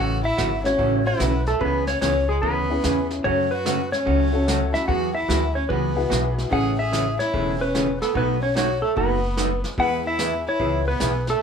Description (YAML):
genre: country, western swing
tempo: 147 BPM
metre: 4/4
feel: swing 65% on 8ths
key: A major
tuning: A4 = 440 Hz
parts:
  - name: clean lap steel guitar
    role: melody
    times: 0.0-11.4 s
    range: G#4 to F#5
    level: -25 LUFS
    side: left 1 dB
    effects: none
  - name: clear fiddle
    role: second line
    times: 0.0-11.4 s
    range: G#3 to B4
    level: -27 LUFS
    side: equal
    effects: none
  - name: vintage hollow-body jazz guitar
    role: accompaniment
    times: 0.0-11.1 s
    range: B2 to G#4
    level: -26 LUFS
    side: right 2 dB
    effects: none
  - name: upright bass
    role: bass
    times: 0.0-11.4 s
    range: E1 to F#2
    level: -26 LUFS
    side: equal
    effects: none
  - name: vintage brush drum kit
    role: drums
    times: 0.4-11.4 s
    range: brushed snare drum, hi-hat, kick drum, snare drum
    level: -31 LUFS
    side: left 1 dB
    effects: none
  - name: honky-tonk upright piano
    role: accompaniment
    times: 0.6-10.9 s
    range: G#3 to A4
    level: -29 LUFS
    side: left 4 dB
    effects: none
room: wet small room reverb, RT60 0.5 s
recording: band playing live in one room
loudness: -20 LUFS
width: side -7 dB against mid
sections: 0.0-11.4 A section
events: none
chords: 0.0 A6; 1.6 C#m7; 3.2 F#m; 4.9 Eadd9; 6.5 Amaj7; 8.1 B7; 9.8 E